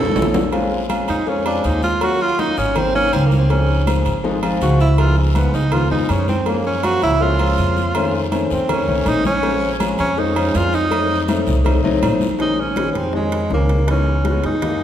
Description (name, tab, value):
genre	Afro-Cuban jazz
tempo	162 BPM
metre	4/4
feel	straight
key	Bb minor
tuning	A4 = 440 Hz
part	clear tenor saxophone	melody	0.0-14.8 s	Ab3 to A4	-20 LUFS	right 2 dB	none
part	warm grand piano	accompaniment	0.0-14.8 s	Eb3 to Gb4	-21 LUFS	left 3 dB	none
part	upright bass	bass	0.0-14.8 s	Ab1 to Gb2	-20 LUFS	equal	none
part	congas	percussion	0.1-14.8 s	none	-28 LUFS	left 1 dB	none
part	guiro	percussion	0.2-12.4 s	none	-36 LUFS	left 4 dB	none
part	timbales and agogo bells	percussion	0.2-14.8 s	none	-27 LUFS	right 3 dB	none
part	bongos and cowbell	percussion	0.3-14.8 s	none	-30 LUFS	left 3 dB	none
room	wet scoring stage reverb, RT60 1.7 s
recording	recorded in a church or concert hall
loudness	-15 LUFS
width	side -10 dB against mid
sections	0.5-12.4 A section; 12.4-14.8 B section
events	drum fill 0.0-0.5; tenor saxophone solo 0.0-12.4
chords	0.0 F7b9 (rootless); 0.5 Bbm7; 2.0 Ebm9; 2.8 Ab7; 3.5 Dbmaj7; 5.0 Db7; 6.5 Gbmaj7; 8.0 F7b13; 9.4 Bbm9; 10.9 F7b9; 12.4 Bbm11; 13.9 Dbm9